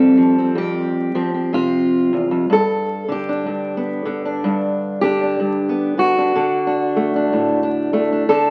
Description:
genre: folk, solo fingerstyle acoustic guitar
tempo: 62 BPM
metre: 4/4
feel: swing 61% on 8ths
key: G major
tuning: A4 = 440 Hz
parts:
  - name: fingerpicked steel-string acoustic guitar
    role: solo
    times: 0.0-8.5 s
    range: E2 to A4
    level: -18 LUFS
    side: equal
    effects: none
room: moderate large studio reverb, RT60 1.1 s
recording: very old 78 rpm record, vinyl crackle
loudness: -19 LUFS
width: mono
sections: 0.0-6.4 A section; 6.4-8.5 B section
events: none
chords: 0.0 Fsus2; 2.5 G; 6.4 D

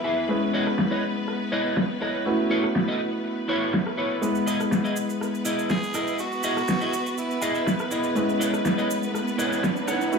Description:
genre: nu-disco, nu disco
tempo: 122 BPM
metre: 4/4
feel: straight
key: E major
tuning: A4 = 440 Hz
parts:
  - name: raspy tenor saxophone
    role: melody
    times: 0.0, 5.7-7.9 s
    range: E4 to G#4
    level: -30 LUFS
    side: right 2 dB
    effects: tape echo
  - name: clear baby grand piano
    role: accompaniment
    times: 0.0-10.2 s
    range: G#3 to D#5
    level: -27 LUFS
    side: equal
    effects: vintage 12-bit sampler grit, tape echo
  - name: clear symphonic string section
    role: sustained chords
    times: 0.0-10.2 s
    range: B3 to B4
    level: -32 LUFS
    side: equal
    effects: none
  - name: clean electric guitar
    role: riff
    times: 0.0-10.1 s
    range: E4 to G#5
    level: -28 LUFS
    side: equal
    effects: analog chorus, low-pass filter, tape echo
  - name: electronic rim click and snare drum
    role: drums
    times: 0.7-10.0 s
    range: none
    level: -28 LUFS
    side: equal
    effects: overdrive, low-pass filter on snare, low-pass filter on hats, low-pass filter on perc, low-pass filter on room
  - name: cabasa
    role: percussion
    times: 4.2-10.2 s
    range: none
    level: -38 LUFS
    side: right 7 dB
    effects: none
  - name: riser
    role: sound effects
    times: 9.0-10.2 s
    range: none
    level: -31 LUFS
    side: right 3 dB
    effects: none
room: moderate plate reverb, RT60 1.3 s, small room ambience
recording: none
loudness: -22 LUFS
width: side -5 dB against mid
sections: 0.0-10.2 A section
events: clean electric guitar fill 0.0, 7.2-8.2; riser 9.0-10.2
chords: 0.3 C#m9; 2.3 B9sus4; 4.2 Emaj7; 8.2 C#m9

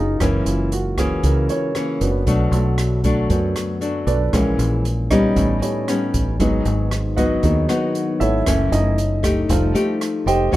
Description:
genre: bossa nova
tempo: 116 BPM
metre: 4/4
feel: straight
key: unclear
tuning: A4 = 440 Hz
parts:
  - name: nylon-string guitar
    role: accompaniment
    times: 0.0-10.6 s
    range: F#2 to G#4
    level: -21 LUFS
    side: left 2 dB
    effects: none
  - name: warm grand piano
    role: accompaniment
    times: 0.0-10.6 s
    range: D3 to G5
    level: -22 LUFS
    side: right 2 dB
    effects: none
  - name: fingered electric bass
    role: bass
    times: 0.0-10.6 s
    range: E1 to F#2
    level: -20 LUFS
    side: equal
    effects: none
  - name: open jazz drum kit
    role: drums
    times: 0.2-10.6 s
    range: hi-hat, kick drum, rim click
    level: -25 LUFS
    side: right 1 dB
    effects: none
room: little or no reverb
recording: none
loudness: -17 LUFS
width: side -16 dB against mid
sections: 0.0-10.6 A section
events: grand piano solo 0.0-10.6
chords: 0.2 F#7; 2.3 Bm7; 4.3 A#m7b5; 5.4 A9; 6.4 G#m7; 8.5 F#m7; 9.5 F9

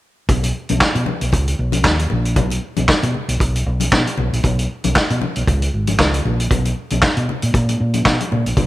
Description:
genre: disco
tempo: 116 BPM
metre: 4/4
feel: swing 56% on 16ths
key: B major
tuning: A4 = 440 Hz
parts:
  - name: hollow-body short-scale fingered electric bass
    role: bass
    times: 0.3-8.7 s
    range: G#1 to B2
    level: -19 LUFS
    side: equal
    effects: none
  - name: vintage drum kit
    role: drums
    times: 0.3-8.7 s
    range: handclaps, hi-hat, kick drum, snare drum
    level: -18 LUFS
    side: equal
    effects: none
  - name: congas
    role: percussion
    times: 0.3-8.7 s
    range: none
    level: -25 LUFS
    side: left 4 dB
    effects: none
room: little or no reverb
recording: none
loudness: -15 LUFS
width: side -16 dB against mid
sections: 0.3-8.7 A section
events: none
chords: none

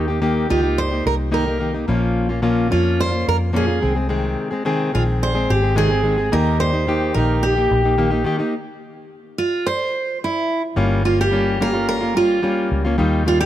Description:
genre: pop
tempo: 108 BPM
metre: 4/4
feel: straight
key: unclear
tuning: A4 = 440 Hz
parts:
  - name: fingerpicked plugged-in steel-string acoustic guitar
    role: accompaniment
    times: 0.0-13.5 s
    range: Bb2 to Ab4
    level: -20 LUFS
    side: left 2 dB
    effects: none
  - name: vintage muted fingered electric bass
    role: bass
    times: 0.0-13.5 s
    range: G1 to F2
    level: -21 LUFS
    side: equal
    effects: none
  - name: picked steel-string acoustic guitar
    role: melody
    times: 0.5-13.5 s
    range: E4 to C5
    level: -21 LUFS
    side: right 2 dB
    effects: none
room: light reverb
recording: none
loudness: -17 LUFS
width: side -12 dB against mid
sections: 0.0-10.8 A section; 10.8-13.5 B section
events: stop 8.5-10.8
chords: 0.0 Eb; 1.9 Bbm; 3.8 Ab; 6.3 Eb; 8.5 N.C.; 10.8 Gm7b5

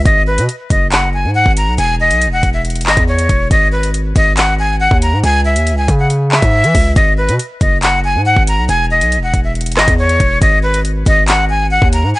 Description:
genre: hip hop, drill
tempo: 139 BPM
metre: 4/4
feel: half-time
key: G# minor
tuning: A4 = 441 Hz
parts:
  - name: distorted 808-style bass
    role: bass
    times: 0.0-12.1 s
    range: E1 to E3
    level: -15 LUFS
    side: equal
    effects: distortion
  - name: breathy bright jazz flute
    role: melody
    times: 0.1-12.2 s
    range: B4 to A#5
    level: -14 LUFS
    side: left 1 dB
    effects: ping-pong delay
  - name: drill drum kit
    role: drums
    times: 0.1-12.0 s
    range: handclaps, hi-hat, kick drum, rim click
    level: -14 LUFS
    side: equal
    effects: none
room: little or no reverb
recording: vinyl crackle, nothing above 10.3 kHz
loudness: -10 LUFS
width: side -18 dB against mid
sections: 0.0-12.2 A section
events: none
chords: 0.1 G#7(no3); 1.8 N.C.; 3.5 G#5; 5.2 C#m; 7.0 G#7(no3); 8.7 N.C.; 10.4 G#5

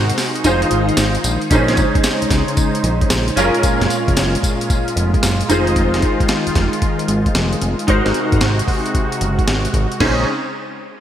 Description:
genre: R&B, new jack swing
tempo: 113 BPM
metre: 4/4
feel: swing 67% on 16ths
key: Bb minor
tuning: A4 = 440 Hz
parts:
  - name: clear concert grand piano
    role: accompaniment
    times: 0.0-10.3 s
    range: Db4 to C5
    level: -20 LUFS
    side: equal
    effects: ensemble chorus, shimmer reverb
  - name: warm analog pad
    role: sustained chords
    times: 0.0-10.3 s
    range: Bb2 to C5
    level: -21 LUFS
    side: equal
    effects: chorus, shimmer reverb
  - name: fat analog bass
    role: bass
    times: 0.0-10.3 s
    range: F1 to Db2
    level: -19 LUFS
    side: equal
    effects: none
  - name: boom bap sampler-style drum kit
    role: drums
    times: 0.1-10.2 s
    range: crash cymbal, hi-hat, kick drum, snare drum, tambourine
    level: -19 LUFS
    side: equal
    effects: none
room: moderate lush hall reverb, RT60 2.5 s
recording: bright 1980s-style digital production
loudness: -14 LUFS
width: side -10 dB against mid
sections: 0.0-1.5 A section; 1.5-10.0 B section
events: break 0.0-1.5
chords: 0.5 Fm7; 1.5 Bbm11; 3.4 Gbmaj9; 5.5 Fm7; 7.9 Ab7; 10.0 Bbm11

